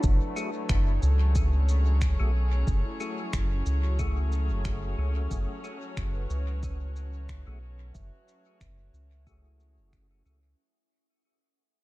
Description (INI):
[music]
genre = ambient dub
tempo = 91 BPM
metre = 4/4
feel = swing 55% on 16ths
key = F# minor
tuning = A4 = 441 Hz
[part]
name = warm chamber string section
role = sustained chords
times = 0.0-10.6 s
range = F#3 to C#5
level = -39 LUFS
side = left 1 dB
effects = none
[part]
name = vibraphone with soft mallets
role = arpeggios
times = 0.0-10.6 s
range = C#4 to E5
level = -44 LUFS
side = right 2 dB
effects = low-pass filter, dub echo
[part]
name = round analog bass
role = bass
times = 0.0-10.6 s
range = F#1 to C#2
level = -26 LUFS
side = equal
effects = none
[part]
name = electronic kick drum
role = drums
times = 0.0-10.1 s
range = none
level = -29 LUFS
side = equal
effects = studio reverb
[part]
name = electronic shaker and finger snaps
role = drums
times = 0.0-10.4 s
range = none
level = -42 LUFS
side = equal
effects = overdrive, studio reverb, dub echo
[part]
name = percussive tonewheel organ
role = stabs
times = 0.4-10.4 s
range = A3 to G#4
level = -39 LUFS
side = left 3 dB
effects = chorus vibrato, slow rotary speaker, low-pass filter, dub echo
[sound]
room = little or no reverb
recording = dark, warm production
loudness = -25 LUFS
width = side -19 dB against mid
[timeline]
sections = 0.0-10.6 A section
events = fade-out 0.0-10.6; filter sweep on vibraphone 0.0-10.6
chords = 0.0 F#madd9